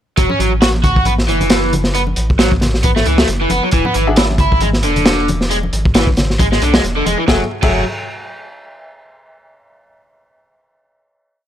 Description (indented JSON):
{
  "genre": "breakbeat, breaks",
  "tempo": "135 BPM",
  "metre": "4/4",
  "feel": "swing 56% on 16ths",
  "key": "F# minor",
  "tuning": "A4 = 440 Hz",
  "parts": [
    { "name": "overdriven electric guitar", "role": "riff", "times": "0.2-7.8 s", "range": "D3 to F#4", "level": "-17 LUFS", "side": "right 1 dB", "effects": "analog delay" },
    { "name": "saturated sub bass", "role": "bass", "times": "0.2-7.8 s", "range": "E1 to C#2", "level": "-18 LUFS", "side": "equal", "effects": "tube saturation" },
    { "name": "crunchy breakbeat drum kit", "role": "drums", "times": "0.2-7.7 s", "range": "crash cymbal, hi-hat, kick drum, snare drum", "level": "-15 LUFS", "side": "equal", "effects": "none" },
    { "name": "congas", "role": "percussion", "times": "0.3-7.2 s", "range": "none", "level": "-24 LUFS", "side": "left 2 dB", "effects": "none" },
    { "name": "bright grand piano", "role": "stabs", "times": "4.1-4.2, 7.3-7.8 s", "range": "A3 to E5", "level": "-22 LUFS", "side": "left 4 dB", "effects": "analog delay" }
  ],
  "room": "small room ambience",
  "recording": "dry, gritty hardware recording",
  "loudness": "-12 LUFS",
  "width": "side -10 dB against mid",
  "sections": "0.2-7.3 drop; 7.3-9.1 final chord",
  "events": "drop 0.2-7.3",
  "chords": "0.2 F#m7; 3.7 E7; 7.3 F#m9"
}